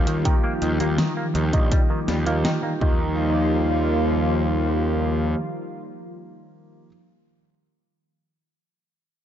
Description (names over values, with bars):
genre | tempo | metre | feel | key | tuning
synthwave | 82 BPM | 4/4 | straight | Eb major | A4 = 440 Hz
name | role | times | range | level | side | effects
lush unison pad | sustained chords | 0.0-6.9 s | Eb3 to F4 | -26 LUFS | equal | chorus, sidechain pumping
warm electric grand piano | stabs | 0.0-6.9 s | Eb3 to G5 | -30 LUFS | right 2 dB | low-pass filter, ping-pong delay
fuzz picked electric bass | bass | 0.0-5.3 s | Bb1 to Eb2 | -23 LUFS | equal | overdrive, tube saturation, sidechain pumping, low-pass filter
semi-hollow electric guitar | riff | 0.1-3.5 s | Eb3 to Eb4 | -33 LUFS | right 2 dB | lush chorus, low-pass filter, digital delay
pop drum kit | drums | 0.1-2.6 s | hi-hat, snare drum | -28 LUFS | left 1 dB | none
electronic kick drum | drums | 0.3-3.0 s | none | -20 LUFS | equal | none
room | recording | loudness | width
light reverb | dark, warm production, nothing above 7.6 kHz | -19 LUFS | side -10 dB against mid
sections
0.0-3.2 A section; 3.2-6.1 B section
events
filter sweep on analog synth pad 0.0-3.2; filter sweep on electric grand piano 0.0-3.2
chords
0.0 Ebadd9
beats
| 0.25 0.98 1.72 2.45 | 3.18 3.91 4.64 5.37